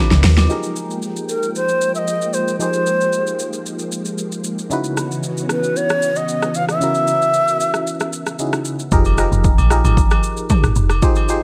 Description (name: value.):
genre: amapiano.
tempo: 114 BPM.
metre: 4/4.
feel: straight.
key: unclear.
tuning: A4 = 440 Hz.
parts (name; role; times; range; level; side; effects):
barking FM electric piano; accompaniment; 0.0-11.4 s; Db3 to C5; -26 LUFS; equal; chorus, phaser, tremolo.
soft string machine; sustained chords; 0.0-8.9 s; Fb3 to G5; -29 LUFS; equal; ensemble chorus.
deep log drum bass; bass; 0.1-0.5, 8.9-11.0 s; F1 to Eb2; -17 LUFS; equal; none.
deep house drum kit; drums; 0.1-11.4 s; hi-hat, kick drum, rim click, shaker, snare drum, toms; -22 LUFS; equal; overdrive.
agogo bells and woodblock; percussion; 0.4-0.5, 9.1-11.3 s; none; -29 LUFS; equal; none.
long shakuhachi; melody; 1.3-8.4 s; Bb4 to F5; -21 LUFS; equal; none.
room: light reverb.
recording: none.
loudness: -18 LUFS.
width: mono.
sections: 0.5-8.9 A section; 8.9-11.4 B section.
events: drum fill 0.0-0.5.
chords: 0.5 Fm11; 4.7 Dbm11; 8.9 Fm11.